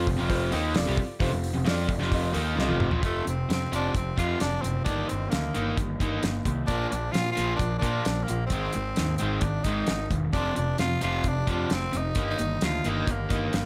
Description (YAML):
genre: classic rock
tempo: 131 BPM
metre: 4/4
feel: straight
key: unclear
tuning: A4 = 440 Hz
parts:
  - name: warm upright piano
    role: accompaniment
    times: 0.0-3.0 s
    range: F4 to Eb5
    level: -36 LUFS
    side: equal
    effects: none
  - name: crunchy overdriven guitar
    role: riff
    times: 0.0-13.7 s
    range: F2 to F4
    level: -34 LUFS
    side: equal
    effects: none
  - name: overdriven electric guitar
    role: riff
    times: 0.0-13.7 s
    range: F2 to F4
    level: -34 LUFS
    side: equal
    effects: none
  - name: fuzz picked electric bass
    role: bass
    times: 0.0-13.7 s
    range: E1 to Bb2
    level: -33 LUFS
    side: equal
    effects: overdrive
  - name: damped 70s drum kit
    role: drums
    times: 0.1-13.6 s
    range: hi-hat, kick drum, snare drum, toms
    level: -32 LUFS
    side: equal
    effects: none
  - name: growling tenor saxophone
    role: melody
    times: 3.1-13.7 s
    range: A3 to F4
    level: -33 LUFS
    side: equal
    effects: none
room: light reverb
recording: none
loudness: -27 LUFS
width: mono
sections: 0.0-3.0 A section; 3.0-13.7 B section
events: drum fill 2.6-3.0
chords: 0.0 F; 3.0 F5; 4.9 Eb/G; 6.7 Bb; 8.5 Ab; 10.3 F5; 12.2 Eb/G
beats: 0.30 0.76 | 1.21 1.67 2.12 2.58 | 3.03 3.49 3.94 4.40 | 4.86 5.31 5.77 6.23 | 6.68 7.14 7.60 8.05 | 8.51 8.96 9.42 9.88 | 10.34 10.79 11.25 11.71 | 12.16 12.62 13.08 13.54